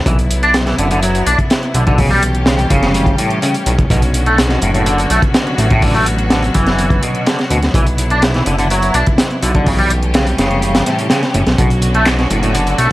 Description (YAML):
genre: breakbeat, breaks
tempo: 125 BPM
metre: 4/4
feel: straight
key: B minor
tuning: A4 = 440 Hz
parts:
  - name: clear studio string section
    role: sustained chords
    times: 0.0-12.9 s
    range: D3 to G4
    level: -20 LUFS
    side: left 1 dB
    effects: sidechain pumping
  - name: twangy electric guitar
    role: riff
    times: 0.1-12.9 s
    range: A2 to D4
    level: -17 LUFS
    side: equal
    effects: ensemble chorus, dub echo
  - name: fat analog bass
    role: bass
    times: 0.1-12.9 s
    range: F#1 to D2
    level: -16 LUFS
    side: equal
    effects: none
  - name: crunchy breakbeat drum kit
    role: drums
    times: 0.1-12.9 s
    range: hi-hat, kick drum, snare drum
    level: -16 LUFS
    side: equal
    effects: none
  - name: punchy analog drum machine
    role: drums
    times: 0.1-12.9 s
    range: handclaps, hi-hat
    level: -26 LUFS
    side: right 1 dB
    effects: none
room: light reverb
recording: vinyl crackle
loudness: -11 LUFS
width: side -16 dB against mid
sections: 0.0-12.9 A section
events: none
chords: 0.1 Esus2; 2.0 A7; 3.9 Bmadd9; 7.7 Esus2; 9.7 A7; 11.6 Bmadd9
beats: | 0.07 0.55 1.02 1.50 | 1.99 2.46 2.94 3.42 | 3.90 4.38 4.87 5.34 | 5.83 6.30 6.79 7.26 | 7.75 8.22 8.71 9.19 | 9.66 10.14 10.62 11.11 | 11.59 12.06 12.54